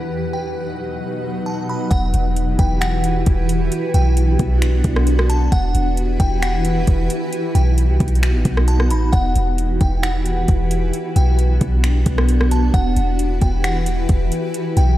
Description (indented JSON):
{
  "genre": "hip hop, atmospheric cloud-rap",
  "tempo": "133 BPM",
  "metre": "4/4",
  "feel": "half-time",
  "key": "E minor",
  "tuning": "A4 = 440 Hz",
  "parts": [
    { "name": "delicate synth tine bell", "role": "melody", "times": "0.0-15.0 s", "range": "F#5 to B5", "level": "-27 LUFS", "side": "equal", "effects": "chorus, phaser, diffuse ambient delay" },
    { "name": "granular cloud pad", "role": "sustained chords", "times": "0.0-15.0 s", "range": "B2 to F#5", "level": "-22 LUFS", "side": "equal", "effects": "built-in reverb, sidechain pumping" },
    { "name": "clean 808-style bass", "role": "bass", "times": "1.9-15.0 s", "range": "E1 to C2", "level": "-17 LUFS", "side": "equal", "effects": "none" },
    { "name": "smooth R&B drum kit", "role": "drums", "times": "1.9-14.9 s", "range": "finger snaps, hi-hat, kick drum, rim click", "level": "-21 LUFS", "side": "equal", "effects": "overdrive" }
  ],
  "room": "light reverb, digital ambience",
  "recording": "none",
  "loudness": "-15 LUFS",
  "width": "side -14 dB against mid",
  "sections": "0.0-1.9 A section; 1.9-15.0 B section",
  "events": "none",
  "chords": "0.1 B; 1.9 Emadd9; 3.7 Bm; 5.5 Emadd9; 7.3 B; 9.1 Emadd9; 10.9 Bm; 12.7 Emadd9"
}